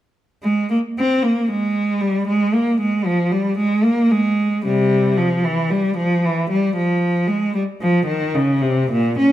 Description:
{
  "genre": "classical, baroque-style suite movement for unaccompanied cello",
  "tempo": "57 BPM",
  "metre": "4/4",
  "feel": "rubato",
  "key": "F minor",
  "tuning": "A4 = 440 Hz",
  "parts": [
    { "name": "clear cello", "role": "solo", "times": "0.4-9.3 s", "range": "Bb2 to Db4", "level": "-16 LUFS", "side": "equal", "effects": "none" }
  ],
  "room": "wet stone room reverb, RT60 1.1 s",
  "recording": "heard from further back in the room",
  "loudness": "-16 LUFS",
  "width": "side -13 dB against mid",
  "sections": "0.4-9.3 A section",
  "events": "none",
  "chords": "none"
}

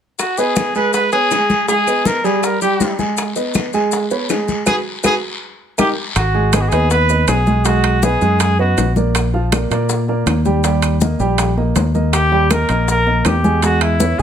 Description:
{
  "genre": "latin, salsa",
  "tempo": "161 BPM",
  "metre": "4/4",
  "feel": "straight",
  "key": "G# minor",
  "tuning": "A4 = 440 Hz",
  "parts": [
    { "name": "warm trumpet", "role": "melody", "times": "0.2-8.9, 12.1-14.2 s", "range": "E4 to B4", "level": "-17 LUFS", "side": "equal", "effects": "none" },
    { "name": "bongos", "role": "percussion", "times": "0.2-14.2 s", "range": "none", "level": "-26 LUFS", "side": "left 6 dB", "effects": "none" },
    { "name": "claves", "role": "percussion", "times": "0.2-14.0 s", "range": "none", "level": "-29 LUFS", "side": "right 6 dB", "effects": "none" },
    { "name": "congas", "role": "percussion", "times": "0.2-14.2 s", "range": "none", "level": "-22 LUFS", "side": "left 3 dB", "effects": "none" },
    { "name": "guiro", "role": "percussion", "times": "0.2-5.9 s", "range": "none", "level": "-29 LUFS", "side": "left 4 dB", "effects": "none" },
    { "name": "maracas", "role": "percussion", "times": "0.2-14.2 s", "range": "none", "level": "-28 LUFS", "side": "left 9 dB", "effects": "none" },
    { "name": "warm grand piano", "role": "accompaniment", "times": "0.4-14.2 s", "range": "E#3 to G#5", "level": "-19 LUFS", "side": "right 3 dB", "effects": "none" },
    { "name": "fingered electric bass", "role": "bass", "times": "6.2-14.2 s", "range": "G#1 to A#2", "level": "-16 LUFS", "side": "equal", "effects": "none" },
    { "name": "timbales", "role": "percussion", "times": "6.2-14.0 s", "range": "none", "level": "-24 LUFS", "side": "right 8 dB", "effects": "none" }
  ],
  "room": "light reverb",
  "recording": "close, detailed microphones",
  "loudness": "-13 LUFS",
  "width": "side -8 dB against mid",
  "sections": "0.2-6.2 A section; 6.2-14.2 B section",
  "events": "band accent 4.7-6.2; drum fill 5.6-6.2",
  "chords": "0.2 G#m; 0.9 C#5; 1.7 G#m; 2.4 Gm; 3.2 G#m; 3.9 C#5; 4.7 G#m7; 5.4 D#; 6.2 G#m7; 7.7 B6; 9.1 A#; 10.6 D#; 13.6 E6"
}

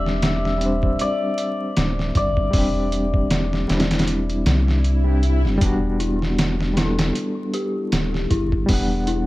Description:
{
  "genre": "trip hop",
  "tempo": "78 BPM",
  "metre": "4/4",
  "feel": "swing 56% on 16ths",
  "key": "unclear",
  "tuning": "A4 = 441 Hz",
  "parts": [
    { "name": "hammered dulcimer", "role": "melody", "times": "0.0-4.8 s", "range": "D5 to E5", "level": "-26 LUFS", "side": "left 2 dB", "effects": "dub echo" },
    { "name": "overdriven reed electric piano", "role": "accompaniment", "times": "0.0-9.3 s", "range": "G3 to F#5", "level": "-24 LUFS", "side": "left 1 dB", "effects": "fast tremolo, harmonic tremolo" },
    { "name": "soft dub sub bass", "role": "bass", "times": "0.0-9.3 s", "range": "D1 to C2", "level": "-22 LUFS", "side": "equal", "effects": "none" },
    { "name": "trip hop sampler-style drum kit", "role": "drums", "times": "0.1-9.3 s", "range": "hi-hat, kick drum, snare drum", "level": "-22 LUFS", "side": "equal", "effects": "overdrive, small room ambience" },
    { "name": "swell", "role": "sound effects", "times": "4.4-5.6 s", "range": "none", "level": "-33 LUFS", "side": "left 2 dB", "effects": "none" },
    { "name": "dark detuned synth bell", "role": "arpeggios", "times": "6.0-9.3 s", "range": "E4 to G4", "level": "-28 LUFS", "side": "left 3 dB", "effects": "chorus, phaser, tape echo" }
  ],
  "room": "little or no reverb",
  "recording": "vinyl crackle",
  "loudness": "-18 LUFS",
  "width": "side -18 dB against mid",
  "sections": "0.0-9.3 A section",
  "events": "kick drops out 4.1-5.6; swell 4.4-5.6",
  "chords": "0.0 Csus2; 5.6 Em7"
}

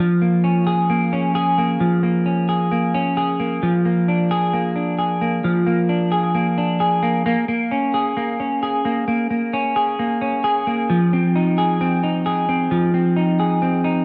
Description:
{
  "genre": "dream pop",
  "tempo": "66 BPM",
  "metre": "4/4",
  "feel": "straight",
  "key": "unclear",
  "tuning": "A4 = 440 Hz",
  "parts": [
    { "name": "semi-hollow electric guitar", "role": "solo", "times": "0.0-14.0 s", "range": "F3 to Ab4", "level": "-19 LUFS", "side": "equal", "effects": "lush chorus, analog delay" }
  ],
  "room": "moderate studio reverb, RT60 0.6 s",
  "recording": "dark, warm production",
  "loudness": "-19 LUFS",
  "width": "mono",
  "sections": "0.0-14.0 A section",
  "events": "none",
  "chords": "0.0 Bbm7/F; 10.9 Fm7"
}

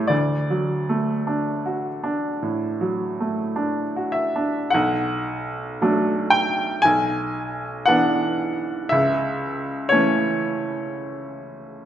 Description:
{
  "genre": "classical, romantic nocturne for solo piano",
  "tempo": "50-61 BPM",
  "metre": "4/4",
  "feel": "rubato",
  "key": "D major",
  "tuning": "A4 = 440 Hz",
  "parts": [
    { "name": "bright baby grand piano", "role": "solo", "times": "0.0-11.9 s", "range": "B1 to G#5", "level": "-20 LUFS", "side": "equal", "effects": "none" }
  ],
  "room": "moderate concert hall reverb, RT60 1.8 s",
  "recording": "none",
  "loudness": "-20 LUFS",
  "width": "side -10 dB against mid",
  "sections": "0.0-4.7 A section; 4.7-11.9 B section",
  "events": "none",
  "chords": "0.1 D; 4.7 Bm7; 6.8 E7/B; 8.9 A/C#"
}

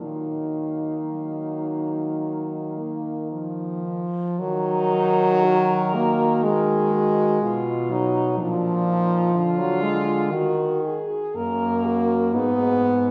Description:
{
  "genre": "classical, lyrical piece for horn quartet",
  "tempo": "53-63 BPM",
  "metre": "4/4",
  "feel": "rubato",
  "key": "Eb minor",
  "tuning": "A4 = 440 Hz",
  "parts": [
    { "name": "dark French horn", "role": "melody", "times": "0.0-13.1 s", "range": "Eb4 to Bb4", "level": "-31 LUFS", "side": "equal", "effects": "none" },
    { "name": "warm French horn", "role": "second line", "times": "0.0-13.0 s", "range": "Bb3 to Bb4", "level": "-32 LUFS", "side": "equal", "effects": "none" },
    { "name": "mellow French horn", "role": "accompaniment", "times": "0.0-13.1 s", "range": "Eb3 to Cb4", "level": "-25 LUFS", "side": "equal", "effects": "none" },
    { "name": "warm French horn", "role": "bass", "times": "0.0-13.1 s", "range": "Gb2 to Eb3", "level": "-31 LUFS", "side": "equal", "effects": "none" }
  ],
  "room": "wet scoring stage reverb, RT60 1.7 s",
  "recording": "heard from further back in the room",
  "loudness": "-23 LUFS",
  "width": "mono",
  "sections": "0.0-4.4 A section; 4.4-13.1 B section",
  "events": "none",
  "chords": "0.0 Ebm; 8.4 Bb; 10.3 Ebm; 12.3 Abm"
}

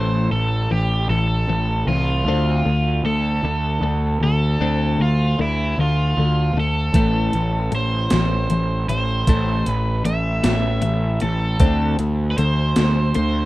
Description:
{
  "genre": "indie rock",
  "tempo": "51 BPM (dotted quarters)",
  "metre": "6/8",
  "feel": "straight",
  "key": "A minor",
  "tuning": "A4 = 445 Hz",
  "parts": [
    { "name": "cranked stack guitar", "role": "melody", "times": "0.0-13.5 s", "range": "E4 to E5", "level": "-24 LUFS", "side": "right 1 dB", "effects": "overdrive" },
    { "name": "twelve-string electric guitar", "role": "riff", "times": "0.0-13.5 s", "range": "A2 to C4", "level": "-24 LUFS", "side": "left 3 dB", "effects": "phaser" },
    { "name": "fuzz picked electric bass", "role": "bass", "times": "0.0-13.5 s", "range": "A1 to D2", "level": "-20 LUFS", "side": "right 1 dB", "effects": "overdrive" },
    { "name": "gated 80s digital drum machine", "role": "drums", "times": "6.9-13.3 s", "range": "hi-hat, kick drum, snare drum", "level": "-20 LUFS", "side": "equal", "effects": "gated reverb, gated reverb snare" }
  ],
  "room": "little or no reverb",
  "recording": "rough home demo mix",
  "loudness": "-17 LUFS",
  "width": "side -17 dB against mid",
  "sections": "0.0-13.5 A section",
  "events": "none",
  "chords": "0.0 Am; 2.3 Dm7; 6.9 Am; 11.6 D5"
}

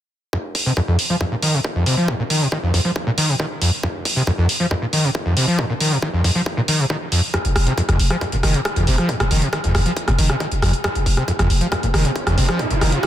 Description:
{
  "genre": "driving peak-time techno",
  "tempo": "137 BPM",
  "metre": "4/4",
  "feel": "straight",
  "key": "F minor",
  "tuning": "A4 = 439 Hz",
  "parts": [
    { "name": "screaming distorted acid line", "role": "riff", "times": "0.3-13.1 s", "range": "F2 to F3", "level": "-19 LUFS", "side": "equal", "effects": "distortion, lush chorus, sidechain pumping, tape echo" },
    { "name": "electronic kick drum", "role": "drums", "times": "0.3-13.1 s", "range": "none", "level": "-28 LUFS", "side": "equal", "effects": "distortion, high-pass filter on kick, high-pass filter on room" },
    { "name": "techno drum kit", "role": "drums", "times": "0.5-13.1 s", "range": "hi-hat, rim click", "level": "-22 LUFS", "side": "equal", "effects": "sidechain pumping on hats" },
    { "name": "growling 808-style bass", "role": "bass", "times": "7.4-12.9 s", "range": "F1", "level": "-20 LUFS", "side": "equal", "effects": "overdrive, sidechain pumping, low-pass filter" },
    { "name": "riser", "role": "sound effects", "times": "11.7-13.1 s", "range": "none", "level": "-27 LUFS", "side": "right 3 dB", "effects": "none" }
  ],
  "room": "light reverb",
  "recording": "none",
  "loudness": "-17 LUFS",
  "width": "side -12 dB against mid",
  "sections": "0.3-13.1 A section",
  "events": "riser 11.7-13.1",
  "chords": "none"
}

